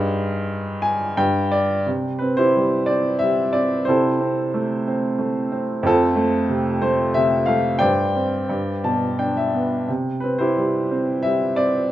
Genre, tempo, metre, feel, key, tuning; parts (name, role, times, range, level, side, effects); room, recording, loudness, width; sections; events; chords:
classical, lyrical solo piano; 90 BPM; 3/4; uneven beats, rubato; C major; A4 = 441 Hz
clear upright piano; solo; 0.0-11.9 s; F2 to A5; -18 LUFS; equal
moderate recital hall reverb, RT60 1.6 s; -18 LUFS; side -13 dB against mid
0.0-1.9 A section; 1.9-11.9 B section
upright piano fill 0.5-1.9, 8.5-9.9
0.0 Cm/G; 1.2 N.C.; 1.9 C; 3.9 Am/C; 5.8 F; 7.8 Gsus4; 8.5 G; 9.9 C